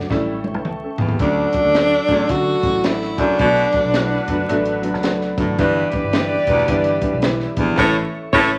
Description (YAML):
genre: uptempo 1960s-style soul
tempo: 109 BPM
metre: 4/4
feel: swing 62% on 8ths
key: D major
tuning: A4 = 441 Hz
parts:
  - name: warm upright piano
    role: accompaniment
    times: 0.0-8.6 s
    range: E3 to B5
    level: -24 LUFS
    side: equal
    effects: none
  - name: mellow tonewheel organ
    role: sustained chords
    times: 0.0-8.6 s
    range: G4 to C#6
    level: -33 LUFS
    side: equal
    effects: stopped rotary speaker
  - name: vintage muted picked electric bass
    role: bass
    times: 0.0-8.6 s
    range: E1 to D3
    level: -30 LUFS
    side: equal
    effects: none
  - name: compact cocktail drum kit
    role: drums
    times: 0.0-8.5 s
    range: crash cymbal, hi-hat, kick drum, snare drum, toms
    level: -26 LUFS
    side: equal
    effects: none
  - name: bright baritone saxophone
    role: riff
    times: 1.0-8.5 s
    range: D2 to B2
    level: -23 LUFS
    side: equal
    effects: none
  - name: breathy tenor saxophone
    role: melody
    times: 1.2-4.8 s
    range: D4 to F#4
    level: -20 LUFS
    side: equal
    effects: none
  - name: bright saxophone section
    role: second line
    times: 1.2-8.5 s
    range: D4 to D5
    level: -26 LUFS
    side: equal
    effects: none
room: wet large studio reverb, RT60 0.8 s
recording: vinyl crackle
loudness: -18 LUFS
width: mono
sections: 0.0-1.2 A section; 1.2-8.6 B section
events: drum fill 0.1-1.2; upright piano fill 0.1-1.2; band accent 7.8-8.6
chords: 0.1 A7; 1.2 Dmaj7; 3.4 Bm7; 5.6 G6; 7.8 A